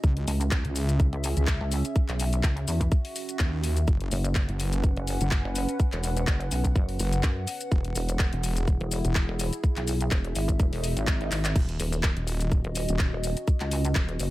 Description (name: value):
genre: bass house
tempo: 125 BPM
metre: 4/4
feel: swing 55% on 16ths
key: unclear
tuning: A4 = 441 Hz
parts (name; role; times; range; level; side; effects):
- dark analog pad; sustained chords; 0.0-14.3 s; Db4 to Gb5; -35 LUFS; equal; chorus, phaser, sidechain pumping
- wobble bass; bass; 0.0-13.1 s; Eb1 to Eb2; -27 LUFS; equal; chorus, tube saturation, sidechain pumping
- electronic kick drum; drums; 0.0-14.1 s; none; -24 LUFS; equal; none
- garage drum kit; drums; 0.0-14.3 s; crash cymbal, handclaps, hi-hat, shaker; -33 LUFS; left 2 dB; none
- pulsing pluck wobble bass; bass; 0.3-14.3 s; Eb1 to Gb2; -28 LUFS; equal; chorus, tube saturation, sidechain pumping
- swell; sound effects; 10.8-11.6 s; none; -39 LUFS; right 1 dB; none
room: little or no reverb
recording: none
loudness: -24 LUFS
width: side -17 dB against mid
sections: 0.0-14.3 A section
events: swell 10.8-11.6; drum fill 11.3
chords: 0.0 Dbm; 3.9 Gbsus4; 7.7 Eadd9; 11.6 Ebm7